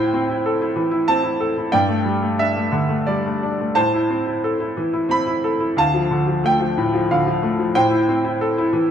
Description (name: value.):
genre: classical, lyrical solo piano.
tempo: 91 BPM.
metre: 3/4.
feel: rubato.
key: A minor.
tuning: A4 = 440 Hz.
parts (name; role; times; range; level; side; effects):
bright baby grand piano; solo; 0.0-8.9 s; D2 to B5; -17 LUFS; equal; none.
room: moderate recital hall reverb, RT60 1.6 s.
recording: dark, warm production.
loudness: -17 LUFS.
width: side -8 dB against mid.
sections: 0.0-8.9 A section.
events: none.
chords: 0.0 Am; 1.7 Gsus2; 3.8 Am; 5.8 Dm; 7.7 Am.